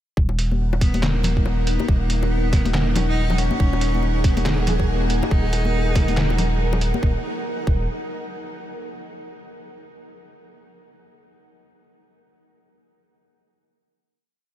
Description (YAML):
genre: deep dubstep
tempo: 140 BPM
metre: 4/4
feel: swing 59% on 16ths, half-time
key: Eb minor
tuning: A4 = 444 Hz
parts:
  - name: granular cloud pad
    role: sustained chords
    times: 0.6-7.2 s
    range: Eb4 to Gb5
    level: -29 LUFS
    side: equal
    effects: built-in reverb
  - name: soft dub sub bass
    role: bass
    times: 0.2-7.9 s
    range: Eb1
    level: -21 LUFS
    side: equal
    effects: none
  - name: electronic kick drum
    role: drums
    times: 0.2-7.8 s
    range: none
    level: -19 LUFS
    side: equal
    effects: none
  - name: bongos and congas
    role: percussion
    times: 0.3-7.0 s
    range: none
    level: -29 LUFS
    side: left 4 dB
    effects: dub echo
  - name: trip hop sampler-style drum kit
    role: drums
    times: 0.4-6.9 s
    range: handclaps, hi-hat, snare drum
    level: -29 LUFS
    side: equal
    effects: overdrive
  - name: clear cello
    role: melody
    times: 0.8-6.6 s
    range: Bb3 to Eb4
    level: -30 LUFS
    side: equal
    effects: dub echo
  - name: flickering grainy texture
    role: texture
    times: 4.1-7.0 s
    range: Ab4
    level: -34 LUFS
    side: right 2 dB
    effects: built-in reverb, wide subtle chorus
room: light reverb, digital ambience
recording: none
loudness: -18 LUFS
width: side -12 dB against mid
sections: 0.2-7.0 drop; 7.0-8.7 final chord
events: drop 0.2-7.0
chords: 0.2 Ebm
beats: | 0.17 0.60 1.03 1.46 | 1.89 2.31 2.74 3.17 | 3.60 4.03 4.46 4.89 | 5.31 5.74 6.17 6.60 | 7.03 7.46